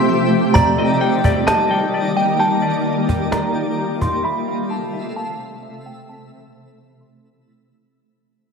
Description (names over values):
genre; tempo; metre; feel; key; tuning
hip hop, atmospheric cloud-rap; 130 BPM; 4/4; half-time; unclear; A4 = 440 Hz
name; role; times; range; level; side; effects
glassy synth bell; melody; 0.0-7.4 s; G5 to C6; -22 LUFS; right 2 dB; chorus, low-pass filter, digital delay
shimmering ambient pad; sustained chords; 0.0-7.9 s; C3 to A4; -19 LUFS; equal; chorus, built-in reverb, low-pass filter
semi-hollow electric guitar; arpeggios; 0.0-7.9 s; D5 to A5; -26 LUFS; left 4 dB; low-pass filter, digital delay
twinkling granular texture; texture; 0.0-7.9 s; E3 to E5; -28 LUFS; equal; built-in reverb
cajon; drums; 0.6-4.1 s; none; -20 LUFS; equal; none
room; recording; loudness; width
wet digital room reverb, RT60 1.1 s; none; -16 LUFS; side -5 dB against mid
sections
0.6-7.9 A section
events
break 0.0-0.6; fade-out 0.6-7.9; filter sweep 0.6-7.9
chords
0.0 Fmaj7; 0.6 Ebmaj7; 4.2 Fmaj7